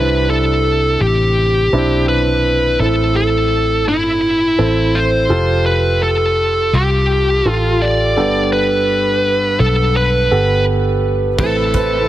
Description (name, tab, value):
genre	piano-driven pop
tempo	84 BPM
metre	4/4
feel	swing 56% on 16ths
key	C major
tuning	A4 = 440 Hz
part	high-gain lead guitar	melody	0.0-12.1 s	E4 to D5	-16 LUFS	equal	distortion
part	warm concert grand piano	accompaniment	0.0-12.1 s	G2 to B4	-18 LUFS	right 2 dB	none
part	vintage muted fingered electric bass	bass	0.0-12.1 s	F1 to C2	-18 LUFS	equal	none
part	warm studio string section	sustained chords	11.4-12.1 s	C3 to B4	-27 LUFS	left 2 dB	none
part	natural country drum kit	drums	11.4-11.9 s	crash cymbal, hi-hat, kick drum	-21 LUFS	left 1 dB	none
room	light reverb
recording	heavily compressed radio sound, multiband compression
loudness	-12 LUFS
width	side -13 dB against mid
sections	0.0-11.4 A section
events	none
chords	0.0 Cadd9; 2.8 Am; 5.3 Fadd9; 8.2 Gadd9; 11.4 Amadd9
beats	0.65 1.37 2.08 | 2.80 3.52 4.23 4.95 | 5.66 6.38 7.09 7.81 | 8.53 9.24 9.96 10.67 | 11.39